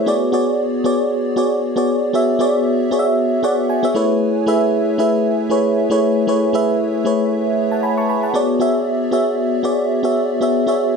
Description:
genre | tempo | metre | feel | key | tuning
amapiano | 116 BPM | 4/4 | swing 55% on 16ths | unclear | A4 = 440 Hz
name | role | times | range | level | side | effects
FM electric piano with soft pad layer | solo | 0.0-11.0 s | A3 to C#6 | -15 LUFS | equal | chorus
room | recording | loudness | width
light reverb | none | -15 LUFS | side -5 dB against mid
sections
0.0-8.3 A section; 8.3-11.0 B section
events
drop 0.0-8.3; FM electric piano fill 3.2-4.2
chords
0.1 Bm69; 4.0 Amaj9; 8.3 Bm69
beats
| 0.07 0.59 1.11 1.62 | 2.14 2.66 3.18 3.69 | 4.21 4.73 5.25 5.76 | 6.28 6.80 7.32 7.83 | 8.35 8.87 9.38 9.90 | 10.42 10.94

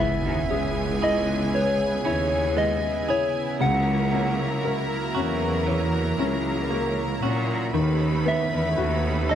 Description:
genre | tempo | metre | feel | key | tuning
pop ballad | 58 BPM | 4/4 | straight | unclear | A4 = 440 Hz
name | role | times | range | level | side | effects
soft struck synth lead | melody | 0.0-9.3 s | C#5 to F#5 | -26 LUFS | equal | chorus
warm studio violin section | second line | 0.0-9.3 s | G#4 to B5 | -32 LUFS | right 1 dB | none
felt-muted upright piano | accompaniment | 0.0-9.3 s | C#3 to C#5 | -29 LUFS | left 7 dB | none
lush unison pad | sustained chords | 0.0-9.3 s | C#3 to E4 | -32 LUFS | right 1 dB | chorus
direct-recorded clean electric guitar | arpeggios | 0.0-9.3 s | C#3 to A4 | -32 LUFS | right 12 dB | none
bright studio cello section | bass | 0.0-9.3 s | C#2 to A#2 | -26 LUFS | equal | none
impact | sound effects | 0.0-3.6 s | none | -36 LUFS | equal | none
room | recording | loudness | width
light reverb | dry, close 1970s-style studio recording | -22 LUFS | side -10 dB against mid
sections
0.0-9.3 A section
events
impact 0.0-3.6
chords
0.0 C#m7; 3.6 F#7/C#; 7.7 B7/D#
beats
0.50 1.53 2.57 | 3.60 4.64 5.67 6.71 | 7.74 8.78

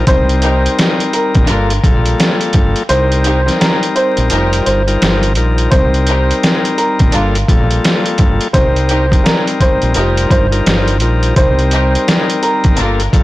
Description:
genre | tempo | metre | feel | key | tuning
hip hop, boom-bap hip-hop | 85 BPM | 4/4 | swing 63% on 16ths | C dorian | A4 = 440 Hz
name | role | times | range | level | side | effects
dark upright piano | melody | 0.0-12.6 s | Bb4 to C5 | -17 LUFS | right 1 dB | high-pass filter, low-pass filter, ping-pong delay
bright tonewheel organ | accompaniment | 0.0-13.2 s | G3 to Bb4 | -17 LUFS | left 3 dB | high-pass filter, low-pass filter
deep dub fingered electric bass | bass | 0.1-13.2 s | F1 to C2 | -15 LUFS | equal | transformer saturation
trip hop sampler-style drum kit | drums | 0.1-13.2 s | hi-hat, kick drum, snare drum | -14 LUFS | equal | overdrive
warm studio string section | stabs | 0.4-13.1 s | D4 to Bb4 | -23 LUFS | equal | high-pass filter, low-pass filter, ping-pong delay
room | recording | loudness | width
little or no reverb | blown-out, overdriven recording, vinyl crackle, overdrive | -10 LUFS | side -17 dB against mid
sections
0.0-13.2 A section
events
kick muted 2.9-5.7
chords
0.1 Cm7; 1.5 Gm9; 2.9 Cm7; 4.3 F9sus4; 5.7 Cm7; 7.1 Gm9; 8.5 Cm7; 10.0 F9sus4; 11.4 Cm7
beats
| 0.07 0.78 1.48 2.19 | 2.90 3.60 4.31 5.01 | 5.72 6.42 7.13 7.84 | 8.54 9.25 9.95 10.66 | 11.37 12.07 12.78

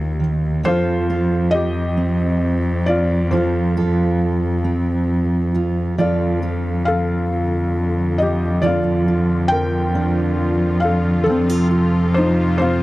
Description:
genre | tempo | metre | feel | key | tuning
acoustic folk-pop ballad | 45 BPM (dotted quarters) | 6/8 | straight | unclear | A4 = 438 Hz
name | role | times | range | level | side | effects
felt-muted upright piano | melody | 0.0-12.8 s | C4 to G5 | -22 LUFS | left 2 dB | none
fingerpicked steel-string acoustic guitar | accompaniment | 0.0-12.8 s | Eb3 to A4 | -22 LUFS | right 4 dB | none
warm cello | bass | 0.0-12.8 s | Eb2 to F2 | -19 LUFS | left 1 dB | none
brassy analog pad | sustained chords | 6.0-12.8 s | C3 to F3 | -27 LUFS | left 2 dB | chorus
room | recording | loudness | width
little or no reverb | dry, close 1970s-style studio recording | -16 LUFS | side -17 dB against mid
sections
0.0-12.8 A section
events
none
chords
0.0 Ebsus2; 0.7 F; 6.0 Dm/F; 11.3 F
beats
| 0.65 1.98 | 3.31 4.64 | 5.97 7.30 | 8.63 9.95 | 11.27 12.60

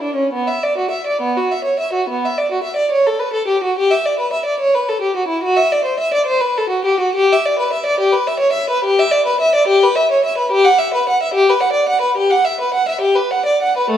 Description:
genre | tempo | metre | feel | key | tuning
classical, baroque-style suite movement for unaccompanied violin | 71 BPM (dotted quarters) | 12/8 | rubato | E minor from 10.5 s | A4 = 440 Hz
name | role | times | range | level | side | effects
warm violin | solo | 0.0-14.0 s | A3 to F#5 | -14 LUFS | equal | none
room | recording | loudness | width
wet stone room reverb, RT60 1.2 s | heard from further back in the room | -14 LUFS | side -10 dB against mid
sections
0.0-14.0 A section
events
none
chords
none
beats
| 0.33 1.21 2.07 2.91 | 3.75 4.59 5.44 6.29 | 7.16 8.02 8.85 9.69 | 10.53 11.35 12.18 13.03 | 13.93

